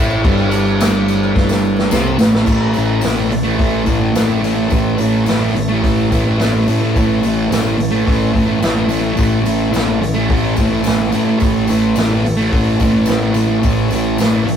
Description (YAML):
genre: garage rock duo or trio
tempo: 108 BPM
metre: 4/4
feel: straight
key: A mixolydian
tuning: A4 = 442 Hz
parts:
  - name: combo organ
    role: sustained chords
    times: 0.0-14.6 s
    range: E4 to C#5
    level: -26 LUFS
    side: left 1 dB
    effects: spring reverb
  - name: thick fuzz guitar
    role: riff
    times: 0.0-14.5 s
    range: G2 to C4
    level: -15 LUFS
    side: right 1 dB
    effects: distortion
  - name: growling picked electric bass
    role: bass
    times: 0.0-14.6 s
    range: G1 to A2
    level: -20 LUFS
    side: equal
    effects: overdrive
  - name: tambourine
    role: percussion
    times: 0.1-14.5 s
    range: none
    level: -35 LUFS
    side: left 6 dB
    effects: none
  - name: vintage drum kit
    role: drums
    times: 0.2-14.6 s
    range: crash cymbal, hi-hat, kick drum, snare drum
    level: -19 LUFS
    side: equal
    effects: none
room: moderate stone room reverb, RT60 1.3 s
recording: rough rehearsal-room recording, warm saturation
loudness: -13 LUFS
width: side -8 dB against mid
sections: 0.0-2.5 A section; 2.5-14.6 B section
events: drum fill 1.4-2.5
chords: 0.0 A